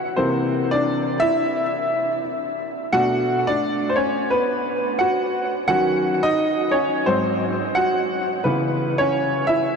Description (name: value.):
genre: hip hop.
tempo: 87 BPM.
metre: 4/4.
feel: swing 59% on 16ths.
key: unclear.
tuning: A4 = 440 Hz.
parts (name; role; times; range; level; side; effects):
warm upright piano; solo; 0.2-9.8 s; G#2 to F#5; -19 LUFS; equal; ping-pong delay.
room: wet huge ambient reverb, RT60 8.1 s.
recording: dreamy mix soaked in reverb.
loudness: -19 LUFS.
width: side -5 dB against mid.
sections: 0.0-9.8 A section.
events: upright piano solo 0.0-9.8.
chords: 0.2 C9; 2.9 Bm7; 5.7 D#m7; 7.1 G#7; 8.4 C#m7.